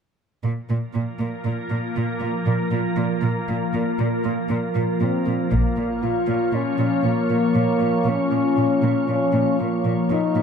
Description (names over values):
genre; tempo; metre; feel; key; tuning
cinematic, hybrid orchestral and electronic film score; 118 BPM; 5/4; straight; Bb minor; A4 = 439 Hz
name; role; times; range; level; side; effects
rich symphonic cello section; bass; 0.4-10.4 s; Bb2; -25 LUFS; right 2 dB; none
glassy FM pad; sustained chords; 1.1-10.4 s; F3 to Db5; -23 LUFS; right 1 dB; ensemble chorus, built-in reverb
warm French horn section; sustained chords; 5.0-10.4 s; Bb3 to F4; -22 LUFS; left 4 dB; none
taiko ensemble; drums; 5.5-6.5 s; none; -25 LUFS; equal; none
room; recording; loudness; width
light reverb; close, detailed microphones; -19 LUFS; side -6 dB against mid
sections
0.4-5.5 A section; 5.5-10.4 B section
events
none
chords
0.4 Bb5; 5.5 Bbm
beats
| 0.44 0.95 1.46 1.97 2.47 | 2.98 3.49 4.00 4.51 5.02 | 5.53 6.03 6.54 7.05 7.56 | 8.07 8.58 9.08 9.59 10.10